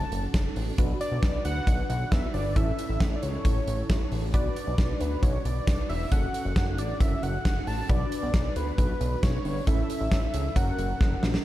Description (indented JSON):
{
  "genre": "synth-pop",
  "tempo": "135 BPM",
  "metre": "4/4",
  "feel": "straight",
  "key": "B minor",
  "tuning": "A4 = 440 Hz",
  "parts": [
    { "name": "wide unison lead", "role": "melody", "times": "0.0-11.2 s", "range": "B4 to A5", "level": "-33 LUFS", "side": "equal", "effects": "shimmer reverb, digital delay" },
    { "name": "funky polysynth comp", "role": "accompaniment", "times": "0.0-11.4 s", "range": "C#4 to B4", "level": "-35 LUFS", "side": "equal", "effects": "chorus, shimmer reverb" },
    { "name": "fat analog bass", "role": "bass", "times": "0.0-11.4 s", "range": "E1 to D2", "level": "-30 LUFS", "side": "equal", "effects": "none" },
    { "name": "huge arena drum kit", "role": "drums", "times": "0.1-11.4 s", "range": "hi-hat, kick drum, snare drum", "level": "-26 LUFS", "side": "equal", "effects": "none" }
  ],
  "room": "little or no reverb",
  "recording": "dark, warm production",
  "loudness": "-24 LUFS",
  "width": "side -15 dB against mid",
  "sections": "0.0-11.4 A section",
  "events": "drum fill 11.0-11.4",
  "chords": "0.0 F#m; 0.8 Bm; 2.6 A; 4.3 Bm; 6.1 F#m; 7.9 Bm; 9.7 A; 10.6 F#"
}